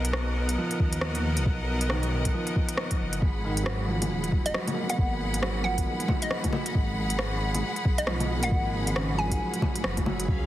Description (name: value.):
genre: future garage.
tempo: 136 BPM.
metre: 4/4.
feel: swing 60% on 16ths.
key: G# dorian.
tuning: A4 = 440 Hz.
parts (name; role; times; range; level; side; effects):
bright studio string section; sustained chords; 0.0-10.5 s; G#3 to B5; -33 LUFS; left 1 dB; sidechain pumping.
swelling detuned saw bass; bass; 0.0-10.5 s; D#1 to G#2; -29 LUFS; equal; sidechain pumping.
organic electronic drum kit; drums; 0.0-10.3 s; bongos, hi-hat, rim click; -32 LUFS; equal; overdrive.
felt-muted upright piano; accompaniment; 0.6-10.5 s; C#3 to B3; -34 LUFS; right 2 dB; sidechain pumping, tape echo.
electronic kick drum; drums; 0.8-10.4 s; none; -27 LUFS; equal; overdrive.
hollow square pluck; melody; 4.5-9.6 s; D#5 to G#5; -34 LUFS; equal; chorus, digital delay.
room: digital ambience.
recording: heavily compressed radio sound.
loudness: -25 LUFS.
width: side -14 dB against mid.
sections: 0.0-10.5 A section.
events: none.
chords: 0.0 Bmaj7; 3.2 G#m7.